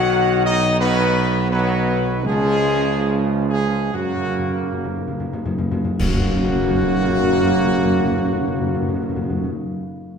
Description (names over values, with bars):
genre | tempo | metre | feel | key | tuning
classical, ceremonial fanfare | 54-88 BPM | 4/4 | straight | F# major | A4 = 440 Hz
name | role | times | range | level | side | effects
dark trumpet section | melody | 0.0-9.5 s | F#4 to F#5 | -24 LUFS | left 1 dB | none
clear trombone section | sustained chords | 0.0-9.5 s | C#3 to A#3 | -27 LUFS | right 4 dB | none
mellow French horn section | sustained chords | 0.0-9.5 s | F#3 to F#4 | -24 LUFS | left 5 dB | none
mellow tuba | bass | 0.0-9.5 s | B1 to F#2 | -21 LUFS | right 4 dB | none
timpani | percussion | 2.3-9.5 s | F#2 to C#3 | -24 LUFS | left 2 dB | none
clash cymbals and concert bass drum | percussion | 6.0-8.1 s | none | -26 LUFS | equal | none
room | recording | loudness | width
wet scoring stage reverb, RT60 1.7 s | none | -17 LUFS | side -6 dB against mid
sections
0.0-6.0 A section; 6.0-10.2 B section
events
slowing down 0.0-6.0; timpani fill 3.9-6.0; band accent 6.0-7.1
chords
0.0 B; 2.3 C#; 3.9 F#